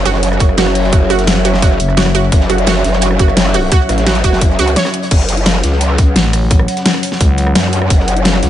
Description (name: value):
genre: dark technical drum and bass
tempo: 172 BPM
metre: 4/4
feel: straight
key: unclear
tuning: A4 = 440 Hz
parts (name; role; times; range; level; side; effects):
- dark analog pad; sustained chords; 0.0-8.5 s; F#3 to F#5; -18 LUFS; left 2 dB; chorus, sidechain pumping
- analog pluck; arpeggios; 0.0-4.9 s; F#4 to C#5; -18 LUFS; right 7 dB; chorus, sidechain pumping, digital delay
- growl bass; bass; 0.0-8.5 s; F#1 to F#2; -14 LUFS; equal; chorus, overdrive, sidechain pumping
- crunchy breakbeat drum kit; drums; 0.1-8.5 s; hi-hat, snare drum; -27 LUFS; left 1 dB; none
- dubstep drum kit; drums; 0.1-8.5 s; crash cymbal, hi-hat, rim click, snare drum; -16 LUFS; left 1 dB; small room ambience
- electronic kick drum; drums; 0.4-8.0 s; none; -11 LUFS; equal; overdrive, small room ambience
- growling FM bass; bass; 1.8-2.3, 6.2-7.5 s; F#1 to C#2; -14 LUFS; equal; none
room: digital ambience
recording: nothing above 10.6 kHz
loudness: -10 LUFS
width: side -12 dB against mid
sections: 0.0-5.1 A section; 5.1-8.5 A section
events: drop 0.0-5.1, 5.1-8.5; break 4.8-5.1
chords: 0.0 F#5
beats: 0.23 0.58 | 0.93 1.28 1.62 1.97 | 2.32 2.67 3.02 3.37 | 3.72 4.07 4.42 4.76 | 5.11 5.46 5.81 6.16 | 6.51 6.86 7.21 7.55 | 7.90 8.25